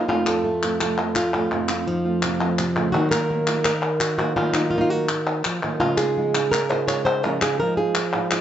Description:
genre	flamenco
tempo	168 BPM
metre	4/4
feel	straight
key	unclear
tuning	A4 = 441 Hz
part	flamenco guitar	melody	0.0-8.4 s	F2 to Db5	-22 LUFS	right 1 dB	none
part	flamenco guitar	stabs	0.0-8.4 s	F2 to F4	-28 LUFS	right 4 dB	none
part	palmas hand claps	percussion	0.1-8.4 s	none	-25 LUFS	left 2 dB	none
room	moderate large studio reverb, RT60 1.1 s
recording	nothing above 7.9 kHz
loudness	-19 LUFS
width	side -10 dB against mid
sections	0.1-8.4 A section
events	none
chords	0.1 F; 3.0 Ebmadd9; 5.8 Dbadd9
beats	| 0.09 0.45 0.81 1.16 | 1.52 1.88 2.24 2.60 | 2.95 3.31 3.67 4.03 | 4.38 4.74 5.10 5.46 | 5.82 6.17 6.53 6.89 | 7.24 7.60 7.96 8.32

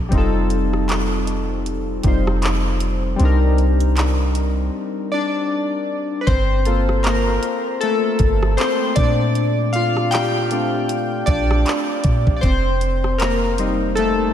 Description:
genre	contemporary R&B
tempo	78 BPM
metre	4/4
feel	swing 58% on 16ths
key	G minor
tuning	A4 = 440 Hz
part	warm analog keys	accompaniment	0.0-14.3 s	G3 to G5	-20 LUFS	left 2 dB	chorus
part	soft 808-style bass	bass	0.0-14.3 s	F1 to Bb2	-20 LUFS	equal	none
part	smooth R&B drum kit	drums	0.1-14.2 s	handclaps, hi-hat, kick drum, rim click	-23 LUFS	equal	none
room	moderate lush hall reverb, RT60 2.6 s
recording	dreamy mix soaked in reverb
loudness	-16 LUFS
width	side -10 dB against mid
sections	0.0-6.3 A section; 6.3-14.3 A section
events	break 4.7-6.3; synth keys solo 6.3-14.3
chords	0.1 F9; 3.2 Cm9; 6.3 Gm9; 9.0 Bbmaj9; 12.4 F9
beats	| 0.12 0.89 1.66 2.43 | 3.20 3.97 4.74 5.50 | 6.28 7.04 7.81 8.58 | 9.35 10.12 10.89 11.66 | 12.43 13.20 13.97

